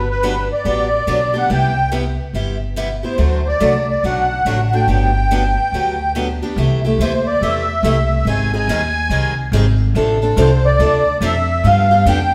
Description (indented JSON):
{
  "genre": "acoustic string swing (jazz manouche)",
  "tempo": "142 BPM",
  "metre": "4/4",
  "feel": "swing 63% on 8ths",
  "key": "G major, C major from 6.6 s",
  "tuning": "A4 = 440 Hz",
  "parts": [
    { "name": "musette accordion", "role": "melody", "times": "0.0-12.3 s", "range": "B4 to Ab5", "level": "-20 LUFS", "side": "equal", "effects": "none" },
    { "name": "picked steel-string acoustic guitar", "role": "accompaniment", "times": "0.0-12.2 s", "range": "C3 to A4", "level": "-23 LUFS", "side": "equal", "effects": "none" },
    { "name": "upright bass", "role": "bass", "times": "0.0-12.3 s", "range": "G1 to G2", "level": "-20 LUFS", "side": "equal", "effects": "none" }
  ],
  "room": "wet stone room reverb, RT60 1.4 s",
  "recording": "band playing live in one room",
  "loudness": "-16 LUFS",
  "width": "mono",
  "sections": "0.0-6.6 A section; 6.6-12.3 B section",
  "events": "none",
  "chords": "0.0 Gmaj7; 1.5 Cmaj7; 3.2 D; 4.9 Gmaj7; 6.6 C6; 8.3 Abmaj7; 10.0 F6/A; 11.6 G7"
}